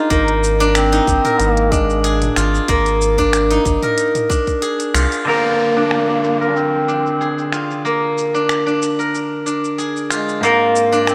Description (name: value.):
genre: organic downtempo.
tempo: 93 BPM.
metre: 4/4.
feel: swing 54% on 16ths.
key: Bb mixolydian.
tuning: A4 = 441 Hz.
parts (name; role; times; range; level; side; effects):
mellow duduk; melody; 0.0-11.1 s; Ab3 to Eb4; -24 LUFS; equal; digital delay.
steel-string zither; arpeggios; 0.0-11.1 s; Bb3 to Bb4; -19 LUFS; equal; low-pass filter, digital delay.
round analog bass; bass; 0.1-5.1 s; Ab1 to C2; -22 LUFS; equal; sidechain pumping.
electronic kick drum; drums; 0.1-4.6 s; none; -22 LUFS; equal; none.
organic electronic drum kit; drums; 0.1-11.1 s; finger snaps, hi-hat, shaker, toms; -27 LUFS; equal; low-pass filter on hats, low-pass filter on perc, low-pass filter on snare, low-pass filter on toms.
semi-hollow electric guitar; accompaniment; 5.2-11.1 s; Ab2 to Bb4; -26 LUFS; equal; subtle chorus, sidechain pumping.
downlifter; sound effects; 5.3-10.4 s; none; -32 LUFS; equal; none.
room: moderate plate reverb, RT60 3.2 s.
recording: rough home demo mix.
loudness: -17 LUFS.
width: mono.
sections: 0.0-5.3 A section; 5.3-11.1 B section.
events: kick drops out 4.6-5.3; band accent 4.9-5.3; filter sweep on guzheng 5.3-11.1.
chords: 0.1 Ab5; 5.3 Bb7; 10.4 Ab.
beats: | 0.11 0.75 1.40 2.04 | 2.69 3.33 3.98 4.62 | 5.27 5.91 6.56 7.20 | 7.85 8.49 9.14 9.78 | 10.43 11.07.